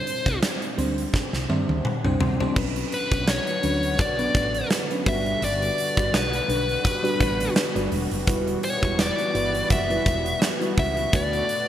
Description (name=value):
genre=1980s-style pop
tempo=84 BPM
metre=4/4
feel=swing 55% on 16ths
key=unclear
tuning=A4 = 439 Hz
part: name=dark smooth lead guitar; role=melody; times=0.0-11.7 s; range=B4 to E5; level=-26 LUFS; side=left 1 dB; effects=overdrive, digital delay
part: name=FM electric piano with soft pad layer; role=accompaniment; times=0.0-11.7 s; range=F#3 to C6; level=-28 LUFS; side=equal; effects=chorus
part: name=huge arena drum kit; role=drums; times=0.1-11.7 s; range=crash cymbal, hi-hat, kick drum, snare drum, toms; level=-25 LUFS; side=equal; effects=gated reverb
part: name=woody fretless electric bass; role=bass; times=0.3-11.4 s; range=E1 to C3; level=-29 LUFS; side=equal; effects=none
part: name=brassy analog pad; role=sustained chords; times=2.6-11.7 s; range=D3 to F#4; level=-33 LUFS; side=equal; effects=chorus, tremolo
room=moderate lush hall reverb, RT60 2.6 s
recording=bright 1980s-style digital production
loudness=-21 LUFS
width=side -11 dB against mid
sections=0.0-2.6 A section; 2.6-11.7 B section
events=drum fill 1.1-2.6; FM electric piano fill 1.1-2.6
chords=0.0 Csus2; 2.6 Bmadd9; 5.1 Gmaj7; 8.3 Emadd9; 11.1 D6